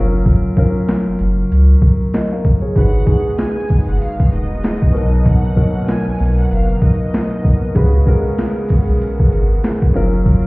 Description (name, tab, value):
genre	hip hop, boom-bap hip-hop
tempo	96 BPM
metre	4/4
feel	swing 60% on 16ths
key	unclear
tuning	A4 = 438 Hz
part	dark baby grand piano	accompaniment	0.0-10.5 s	G#2 to E#5	-19 LUFS	left 1 dB	high-pass filter, low-pass filter
part	soft dub sub bass	bass	0.0-10.4 s	D#1 to C#2	-14 LUFS	equal	none
part	boom bap sampler-style drum kit	drums	0.3-10.4 s	hi-hat, kick drum, snare drum	-15 LUFS	equal	overdrive
part	clear studio violin section	melody	2.8-7.7 s	D#5 to G#5	-31 LUFS	right 1 dB	high-pass filter, low-pass filter, tape echo
part	lush unison pad	sustained chords	2.8-10.5 s	C#3 to F#4	-26 LUFS	right 1 dB	chorus, high-pass filter, low-pass filter
room	little or no reverb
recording	heard muffled through a wall, stone room reverb, vinyl crackle, EQ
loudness	-12 LUFS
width	side -23 dB against mid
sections	0.0-10.5 A section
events	none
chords	0.0 F#maj7; 2.8 G#m7; 4.9 Bmaj7; 7.8 C#7sus4; 9.9 F#maj7